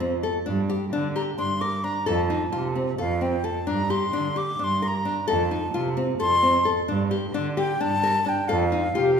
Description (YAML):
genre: contemporary instrumental, chamber music in an uneven meter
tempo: 262 BPM (eighths)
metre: 7/8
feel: straight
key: unclear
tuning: A4 = 440 Hz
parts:
  - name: nylon-string guitar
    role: arpeggios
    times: 0.0-9.1 s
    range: C4 to Bb4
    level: -27 LUFS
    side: left 3 dB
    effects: none
  - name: muted cello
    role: bass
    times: 0.0-9.2 s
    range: F2 to D3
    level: -28 LUFS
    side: right 4 dB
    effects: none
  - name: wooden flute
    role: melody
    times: 1.2-9.2 s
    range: F5 to D6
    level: -25 LUFS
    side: left 1 dB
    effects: none
  - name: dark French horn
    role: second line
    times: 8.9-9.2 s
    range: G4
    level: -19 LUFS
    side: left 3 dB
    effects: none
room: wet scoring stage reverb, RT60 1.9 s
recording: minimal, uncompressed stereo recording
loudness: -22 LUFS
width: side -6 dB against mid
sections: 0.0-9.2 A section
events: none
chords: 0.5 G5; 2.1 F; 3.7 Gm; 5.3 F; 6.9 G5; 8.5 F7